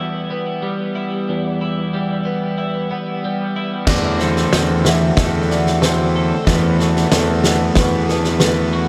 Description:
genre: post-rock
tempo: 92 BPM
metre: 4/4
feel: straight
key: E minor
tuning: A4 = 441 Hz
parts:
  - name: pedal steel guitar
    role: sustained chords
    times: 0.0-8.9 s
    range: D3 to B4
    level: -29 LUFS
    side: equal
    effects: none
  - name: twelve-string electric guitar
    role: arpeggios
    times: 0.0-8.9 s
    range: E2 to A4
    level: -23 LUFS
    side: equal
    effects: analog chorus, analog delay
  - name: electric guitar through a small old amp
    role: arpeggios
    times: 3.9-8.9 s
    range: A4 to E5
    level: -26 LUFS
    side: equal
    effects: lush chorus, analog delay
  - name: fuzz fingered electric bass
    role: bass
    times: 3.9-8.9 s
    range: E2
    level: -20 LUFS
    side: equal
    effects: overdrive
  - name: loose indie drum kit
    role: drums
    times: 3.9-8.6 s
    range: crash cymbal, kick drum, snare drum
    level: -21 LUFS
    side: equal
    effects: none
room: wet huge ambient reverb, RT60 8.1 s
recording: dreamy mix soaked in reverb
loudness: -18 LUFS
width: mono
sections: 0.0-3.9 A section; 3.9-8.9 B section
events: none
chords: 0.0 Em; 3.9 D7/E; 6.5 B7sus4/E

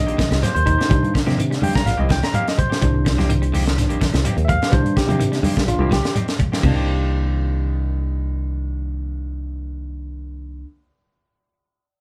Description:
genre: afrobeat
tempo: 126 BPM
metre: 4/4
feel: swing 53% on 16ths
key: C minor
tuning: A4 = 442 Hz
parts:
  - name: barky tine electric piano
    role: accompaniment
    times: 0.0-10.7 s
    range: Eb3 to Bb5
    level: -27 LUFS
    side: equal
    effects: overdrive
  - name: fingered electric bass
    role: bass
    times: 0.0-10.6 s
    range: Bb1 to C3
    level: -24 LUFS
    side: equal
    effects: none
  - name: semi-hollow electric guitar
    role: stabs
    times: 0.1-10.8 s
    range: Eb3 to G4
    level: -34 LUFS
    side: equal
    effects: none
  - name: tight funk drum kit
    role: drums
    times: 0.1-6.8 s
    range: crash cymbal, hi-hat, kick drum, snare drum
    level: -24 LUFS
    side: equal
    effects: none
  - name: clean electric guitar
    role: arpeggios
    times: 0.2-6.8 s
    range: C3 to G3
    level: -31 LUFS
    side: equal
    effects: none
  - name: congas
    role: percussion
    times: 0.2-6.8 s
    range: none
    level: -30 LUFS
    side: equal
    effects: none
  - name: shekere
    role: percussion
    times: 0.2-6.7 s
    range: none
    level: -28 LUFS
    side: equal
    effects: none
  - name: claves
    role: percussion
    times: 0.3-6.7 s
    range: none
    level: -44 LUFS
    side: equal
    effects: none
room: moderate studio ambience, RT60 0.4 s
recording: band playing live in one room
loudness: -19 LUFS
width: mono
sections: 0.0-6.6 A section; 6.6-10.4 B section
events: tine electric piano solo 0.0-6.6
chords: 0.0 Cm7

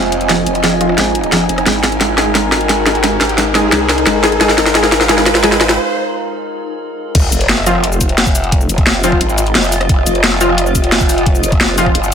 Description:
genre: dark technical drum and bass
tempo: 175 BPM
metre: 4/4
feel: straight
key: F minor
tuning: A4 = 440 Hz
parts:
  - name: metallic inharmonic drone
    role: sustained chords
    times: 0.0-7.1 s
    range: F3 to Bb4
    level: -20 LUFS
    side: left 2 dB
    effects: chorus, built-in reverb, sidechain pumping
  - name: soft round pluck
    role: arpeggios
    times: 0.0-5.6 s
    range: F3 to Ab3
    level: -21 LUFS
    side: right 2 dB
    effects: wide subtle chorus, sidechain pumping, tape echo
  - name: growl bass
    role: bass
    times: 0.0-12.1 s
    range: F1 to C2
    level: -18 LUFS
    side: equal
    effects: chorus, sidechain pumping
  - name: riser and sub drop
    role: sound effects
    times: 0.1-8.5 s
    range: none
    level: -21 LUFS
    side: equal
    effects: none
  - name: granular cloud pad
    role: texture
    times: 0.0-12.1 s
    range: Eb4 to Ab5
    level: -20 LUFS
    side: right 1 dB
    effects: built-in reverb, sidechain pumping
  - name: drum and bass drum kit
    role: drums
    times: 0.1-12.1 s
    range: cabasa, crash cymbal, hi-hat, rim click, snare drum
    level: -14 LUFS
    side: equal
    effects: overdrive, studio ambience
  - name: orchestra-hit-like synth stab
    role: stabs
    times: 0.8-5.6, 7.7-11.9 s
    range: F3 to Ab4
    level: -18 LUFS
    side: equal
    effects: built-in reverb, tape echo
  - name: electronic kick drum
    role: drums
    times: 7.2-11.9 s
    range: none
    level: -14 LUFS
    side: equal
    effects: overdrive, studio ambience
room: light reverb, digital ambience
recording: none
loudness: -10 LUFS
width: side -7 dB against mid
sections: 0.0-7.2 A section; 7.2-12.1 B section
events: build-up 0.0-7.2; drum fill 0.0-5.8; filter sweep on synth drone 0.0-7.2; filter sweep on synth pluck 0.0-7.2; filter sweep on synth stab 0.0-7.2; riser 0.1-5.8; break 5.8-7.2; drop 7.2-12.1; impact 7.2-8.5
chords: 0.0 Fm7; 1.7 Ab; 7.2 F7(no3)

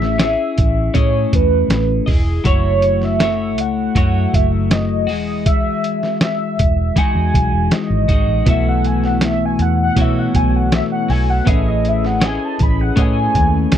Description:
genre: indie pop, bedroom pop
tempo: 80 BPM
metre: 4/4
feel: straight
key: E major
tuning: A4 = 440 Hz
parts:
  - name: warm velvety synth lead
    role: melody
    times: 0.0-13.8 s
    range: B4 to B5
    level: -20 LUFS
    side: right 1 dB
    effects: lush chorus, slapback echo
  - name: twelve-string electric guitar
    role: accompaniment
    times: 0.0-13.8 s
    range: B2 to D#5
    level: -20 LUFS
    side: left 6 dB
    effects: lush chorus, warbly pitch drift
  - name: vintage muted fingered electric bass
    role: bass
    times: 0.0-13.8 s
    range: E1 to B2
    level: -18 LUFS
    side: right 1 dB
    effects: none
  - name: lo-fi sampler-style drum kit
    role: drums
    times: 0.0-13.8 s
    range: hi-hat, kick drum, snare drum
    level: -17 LUFS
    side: right 1 dB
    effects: none
  - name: soft electric-piano-like synth keys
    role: accompaniment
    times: 8.5-13.8 s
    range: B3 to E5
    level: -25 LUFS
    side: right 6 dB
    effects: chorus, tremolo, cassette tape
room: little or no reverb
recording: dry, close 1970s-style studio recording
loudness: -14 LUFS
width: side -10 dB against mid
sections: 0.0-13.8 A section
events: none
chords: 0.0 Amaj9#11; 2.5 F#m7; 5.1 Emaj9; 8.5 B7sus4; 11.5 Amaj9#11

